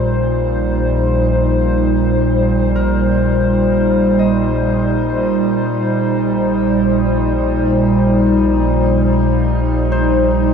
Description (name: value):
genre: ambient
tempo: 63 BPM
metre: 4/4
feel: straight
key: unclear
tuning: A4 = 444 Hz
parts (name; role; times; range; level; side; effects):
- warbly tape-like pad; sustained chords; 0.0-10.5 s; Bb2 to C5; -14 LUFS; equal; chorus, built-in reverb, shimmer reverb
- round analog bass; bass; 0.0-10.5 s; Bb1; -20 LUFS; equal; none
- Celtic harp; arpeggios; 2.8-10.5 s; Bb4 to Eb5; -26 LUFS; left 4 dB; diffuse ambient delay, shimmer reverb
room: wet huge ambient reverb, RT60 8.8 s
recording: dark, warm production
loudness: -13 LUFS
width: side -7 dB against mid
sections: 0.0-10.5 A section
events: none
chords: 0.0 Eb6/Bb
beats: 0.86 | 1.81 2.76 3.71 4.68 | 5.64 6.61 7.56 8.51 | 9.46 10.40